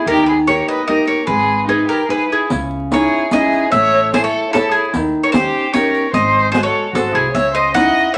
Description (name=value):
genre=italian folk, Italian serenade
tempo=148 BPM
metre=3/4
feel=rubato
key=C# harmonic minor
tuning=A4 = 440 Hz
part: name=bowl-back mandolin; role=melody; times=0.0-8.2 s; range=G#4 to F#5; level=-20 LUFS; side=equal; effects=none
part: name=warm violin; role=second line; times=0.0-8.1 s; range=D#4 to D#5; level=-21 LUFS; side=equal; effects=none
part: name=nylon-string guitar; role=accompaniment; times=0.1-8.1 s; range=C#3 to D#5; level=-21 LUFS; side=equal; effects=none
part: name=upright bass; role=bass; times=0.1-7.9 s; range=G#1 to D#2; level=-29 LUFS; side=equal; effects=none
part: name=riq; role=percussion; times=2.5-8.0 s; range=none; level=-23 LUFS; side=equal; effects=none
room=wet studio reverb, RT60 0.7 s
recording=vinyl crackle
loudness=-15 LUFS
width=mono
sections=0.0-2.5 A section; 2.5-8.2 B section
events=none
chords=0.1 D#; 1.3 G#m; 2.5 C#madd9; 3.7 Amaj7; 4.9 D#7; 6.1 G#7; 7.4 C#madd9